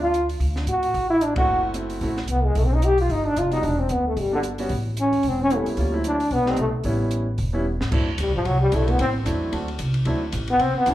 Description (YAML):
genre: jazz, small-group swing and bop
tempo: 224 BPM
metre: 4/4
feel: swing 58% on 8ths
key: D mixolydian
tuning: A4 = 440 Hz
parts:
  - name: warm trombone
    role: melody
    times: 0.0-10.9 s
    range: D3 to G4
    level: -21 LUFS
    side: left 1 dB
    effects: plate reverb, slapback echo
  - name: upright bass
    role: bass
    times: 0.0-10.9 s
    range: E1 to A2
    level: -24 LUFS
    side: equal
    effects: none
  - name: compact cocktail drum kit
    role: drums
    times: 0.1-10.9 s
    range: crash cymbal, hi-hat, kick drum, ride cymbal, snare drum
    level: -32 LUFS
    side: equal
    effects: none
  - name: warm grand piano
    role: accompaniment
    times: 1.4-10.9 s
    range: F#3 to F#4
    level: -27 LUFS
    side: right 1 dB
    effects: plate reverb, slapback echo
room: moderate club reverb, RT60 0.5 s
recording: live gig heard through the venue's PA, club reverb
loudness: -20 LUFS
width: side -14 dB against mid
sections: 0.0-7.9 A section; 7.9-10.9 B section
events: band accent 1.3; drum fill 7.7; trombone solo 7.9-10.9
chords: 0.4 D7 (rootless); 2.6 N.C.; 3.6 Em7; 4.7 A7; 5.8 D7; 6.3 B7alt; 6.8 A7; 7.9 D7